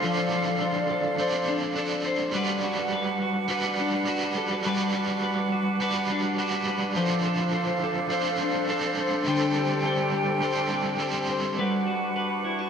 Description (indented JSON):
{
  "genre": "dream pop",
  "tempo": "104 BPM",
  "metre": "4/4",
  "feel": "straight",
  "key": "G major",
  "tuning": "A4 = 440 Hz",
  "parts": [
    { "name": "overdriven semi-hollow guitar", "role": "accompaniment", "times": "0.0-12.1 s", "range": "D3 to D5", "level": "-30 LUFS", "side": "right 3 dB", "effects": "tremolo, wide subtle chorus, shimmer reverb" },
    { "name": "hollow small flute group", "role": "sustained chords", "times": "0.0-12.7 s", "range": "D4 to G5", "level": "-28 LUFS", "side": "right 2 dB", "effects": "shimmer reverb" },
    { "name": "clean electric guitar", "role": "arpeggios", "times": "0.0-12.7 s", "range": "D3 to C5", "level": "-28 LUFS", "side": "left 3 dB", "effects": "lush chorus, tape echo, shimmer reverb" }
  ],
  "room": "wet plate reverb, RT60 2.6 s",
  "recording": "dreamy mix soaked in reverb",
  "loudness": "-24 LUFS",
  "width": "side -7 dB against mid",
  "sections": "0.0-11.6 A section; 11.6-12.7 A section",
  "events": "none",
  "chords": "0.0 F6; 2.3 Gmaj7; 7.0 F6; 9.3 D7sus4; 11.6 Gmaj7"
}